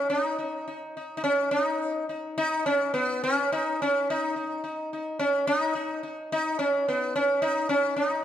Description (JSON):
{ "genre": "indian classical", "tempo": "107 BPM", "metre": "7/4", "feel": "straight", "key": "unclear", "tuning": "A4 = 441 Hz", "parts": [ { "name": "sitar", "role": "solo", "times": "0.0-8.2 s", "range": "Cb4 to Eb4", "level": "-24 LUFS", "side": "equal", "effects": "none" } ], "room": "light reverb", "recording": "none", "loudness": "-24 LUFS", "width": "side -10 dB against mid", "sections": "0.0-8.2 A section", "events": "speeding up 0.0-8.2", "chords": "none" }